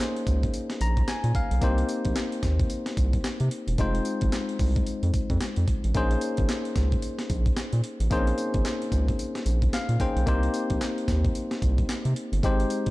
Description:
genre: R&B, new jack swing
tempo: 111 BPM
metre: 4/4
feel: swing 60% on 16ths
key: Bb dorian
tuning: A4 = 440 Hz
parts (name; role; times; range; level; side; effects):
- bell-like tine electric piano; accompaniment; 0.0-12.9 s; Ab3 to Bb5; -29 LUFS; left 2 dB; none
- breakbeat sampler-style drum kit; drums; 0.0-12.9 s; handclaps, hi-hat, kick drum, snare drum, tambourine; -28 LUFS; equal; overdrive
- round analog bass; bass; 0.3-12.9 s; E1 to C3; -24 LUFS; equal; none
room: little or no reverb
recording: dark, warm production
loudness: -23 LUFS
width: side -19 dB against mid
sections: 0.0-12.9 A section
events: tine electric piano fill 0.5-1.6, 9.5-10.3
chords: 0.0 Bbm11; 1.6 Cm7; 3.8 Fm7; 5.9 Bbm11; 10.3 Cm7

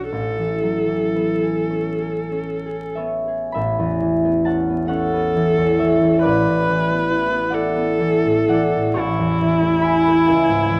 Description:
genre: classical, impressionist duo for viola and harp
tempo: 30-48 BPM (dotted quarters)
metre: 6/8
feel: rubato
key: A major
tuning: A4 = 440 Hz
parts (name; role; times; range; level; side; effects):
- warm viola; melody; 0.0-10.8 s; E4 to B4; -23 LUFS; equal; none
- concert harp; accompaniment; 0.0-10.8 s; A1 to C#6; -21 LUFS; equal; none
room: light reverb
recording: close, detailed microphones, vinyl crackle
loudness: -19 LUFS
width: mono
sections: 0.0-3.5 A section; 3.5-10.8 B section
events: none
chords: 0.1 Amaj9; 3.5 Aadd9; 6.2 D69/A; 9.0 Amaj7; 10.3 C#m7

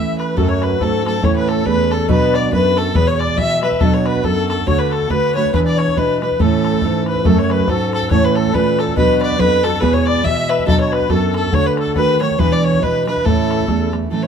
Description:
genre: celtic folk, Celtic polka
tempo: 140 BPM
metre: 2/4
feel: swing 58% on 8ths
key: A major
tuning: A4 = 440 Hz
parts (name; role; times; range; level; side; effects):
- warm fiddle; melody; 0.0-14.3 s; A4 to E5; -19 LUFS; left 1 dB; none
- musette accordion; second line; 0.0-13.9 s; A4 to E5; -24 LUFS; left 7 dB; none
- fingerpicked steel-string acoustic guitar; accompaniment; 0.0-14.3 s; E2 to A4; -18 LUFS; right 5 dB; none
- bodhran; percussion; 0.2-14.1 s; none; -22 LUFS; left 3 dB; none
- dark bass clarinet; bass; 0.4-14.1 s; E2 to E3; -21 LUFS; equal; none
room: moderate studio reverb, RT60 0.8 s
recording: minimal, uncompressed stereo recording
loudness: -13 LUFS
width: side -7 dB against mid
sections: 0.4-7.2 A section; 7.2-14.1 A section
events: none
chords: 0.4 F#m; 1.2 A; 2.1 Bm; 3.0 E; 3.8 Bm; 4.7 D; 5.5 E7; 6.4 A; 7.2 F#m; 8.1 A; 9.0 Bm; 9.8 E; 10.7 Bm; 11.5 D; 12.4 E7; 13.2 A

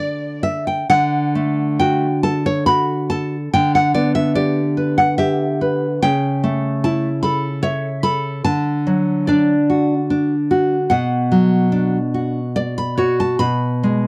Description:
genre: classical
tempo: 61-75 BPM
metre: 3/4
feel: rubato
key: D major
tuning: A4 = 441 Hz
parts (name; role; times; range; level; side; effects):
- nylon-string guitar; accompaniment; 0.0-14.1 s; B2 to B5; -18 LUFS; equal; none
room: little or no reverb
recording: dry, close 1970s-style studio recording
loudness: -18 LUFS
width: mono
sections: 0.9-14.1 A section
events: none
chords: 0.0 D; 3.5 Em7/D; 6.0 A/C#; 8.4 D; 10.9 Bm; 13.4 E/B (rootless)

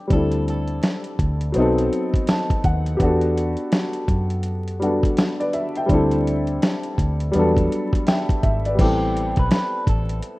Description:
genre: lo-fi hip hop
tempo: 83 BPM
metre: 4/4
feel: swing 62% on 16ths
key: E minor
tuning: A4 = 440 Hz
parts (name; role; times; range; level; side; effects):
- warm upright piano; accompaniment; 0.0-10.4 s; F#3 to A5; -22 LUFS; left 1 dB; cassette tape
- electric guitar through a small old amp; melody; 0.1-2.5, 8.8-10.2 s; G4 to B4; -29 LUFS; equal; tape echo
- vintage muted fingered electric bass; bass; 0.1-10.2 s; G#1 to F#2; -23 LUFS; equal; none
- dusty soul sampler-style drum kit; drums; 0.1-10.4 s; crash cymbal, hi-hat, kick drum, snare drum; -20 LUFS; equal; none
room: little or no reverb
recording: rough home demo mix, vinyl crackle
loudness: -18 LUFS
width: side -20 dB against mid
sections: 0.0-8.8 A section; 8.8-10.4 B section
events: upright piano fill 1.9-3.0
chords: 0.1 D9sus4; 1.6 B7b9; 3.0 Em11; 5.9 D9sus4; 7.3 Em11; 8.8 Am9

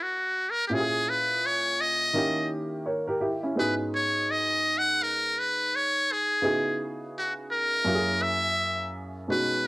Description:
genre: hip hop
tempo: 84 BPM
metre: 4/4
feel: swing 60% on 16ths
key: unclear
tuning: A4 = 441 Hz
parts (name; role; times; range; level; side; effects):
- trumpet with metal mute; melody; 0.0-9.7 s; F#4 to F#5; -25 LUFS; equal; plate reverb
- warm upright piano; accompaniment; 0.0-9.7 s; F#2 to D#5; -29 LUFS; right 1 dB; cassette tape, plate reverb
room: moderate studio reverb, RT60 0.6 s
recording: home recording on cassette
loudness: -24 LUFS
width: side -20 dB against mid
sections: 0.0-9.3 A section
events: muted trumpet solo 0.0-9.3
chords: 0.0 D#m7; 0.7 A#m7b5; 2.2 D#7b9; 3.6 G#m7; 6.4 C#m11; 7.9 F#9

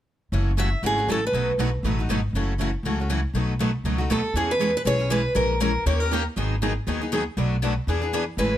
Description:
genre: acoustic string swing (jazz manouche)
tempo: 238 BPM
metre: 4/4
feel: swing 56% on 8ths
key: E major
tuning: A4 = 441 Hz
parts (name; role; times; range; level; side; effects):
- picked steel-string acoustic guitar; accompaniment; 0.3-8.6 s; B2 to A#4; -28 LUFS; left 5 dB; none
- picked steel-string acoustic guitar; accompaniment; 0.3-8.6 s; B2 to C#5; -29 LUFS; right 6 dB; none
- upright bass; bass; 0.3-8.6 s; F#1 to E2; -25 LUFS; equal; none
- picked steel-string acoustic guitar; melody; 0.6-1.5, 4.1-6.3, 8.4-8.6 s; G#4 to E5; -24 LUFS; equal; none
room: little or no reverb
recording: close, detailed microphones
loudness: -21 LUFS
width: side -12 dB against mid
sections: 0.3-4.3 A section; 4.3-8.6 B section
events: none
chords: 0.3 F#m7; 1.3 B7; 2.3 F#m7; 3.3 B7; 4.3 E6; 5.4 A#m7b5; 5.9 D#7; 6.4 G#m7; 7.4 Bm7; 7.9 E7

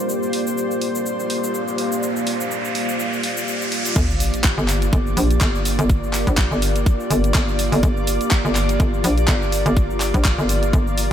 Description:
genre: bass house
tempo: 124 BPM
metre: 4/4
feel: swing 56% on 16ths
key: G minor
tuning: A4 = 440 Hz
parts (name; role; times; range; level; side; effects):
- deep dark ambient pad; sustained chords; 0.0-11.1 s; Bb3 to F5; -25 LUFS; equal; chorus, built-in reverb, sidechain pumping
- granular cloud pad; texture; 0.0-11.1 s; G3 to D5; -27 LUFS; equal; built-in reverb, sidechain pumping
- garage drum kit; drums; 0.1-11.1 s; cabasa, crash cymbal, handclaps, hi-hat; -25 LUFS; equal; overdrive
- riser and sub drop; sound effects; 1.3-5.9 s; none; -27 LUFS; right 1 dB; none
- hollow knocking FM bass; bass; 4.0-11.1 s; G1 to Bb1; -20 LUFS; equal; tube saturation, sidechain pumping
- electronic kick drum; drums; 4.0-10.8 s; none; -17 LUFS; equal; overdrive
room: moderate cathedral reverb, RT60 4.2 s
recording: dreamy mix soaked in reverb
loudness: -17 LUFS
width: side -10 dB against mid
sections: 0.0-4.0 A section; 4.0-11.1 B section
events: riser 1.3-4.0; drop 4.0-11.1; impact 4.0-5.9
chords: 0.0 Gm

